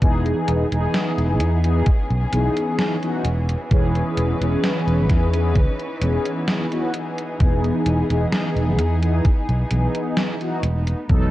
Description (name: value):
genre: vaporwave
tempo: 65 BPM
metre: 4/4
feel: straight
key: E major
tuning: A4 = 439 Hz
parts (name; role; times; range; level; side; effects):
- mellow synth brass; accompaniment; 0.0-11.3 s; E3 to A4; -23 LUFS; equal; lush chorus, analog delay
- dark chamber string section; sustained chords; 0.0-11.3 s; E3 to B4; -29 LUFS; left 1 dB; none
- sustaining fretless electric bass; bass; 0.0-11.3 s; E1 to E2; -20 LUFS; equal; none
- electronic kick drum; drums; 0.0-11.3 s; none; -17 LUFS; equal; none
- gated 80s digital drum machine; drums; 0.0-11.3 s; hi-hat, snare drum; -26 LUFS; equal; gated reverb, gated reverb snare
room: light reverb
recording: cassette tape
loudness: -18 LUFS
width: side -15 dB against mid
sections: 0.0-11.3 A section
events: none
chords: 0.0 Emaj7; 10.6 B7/E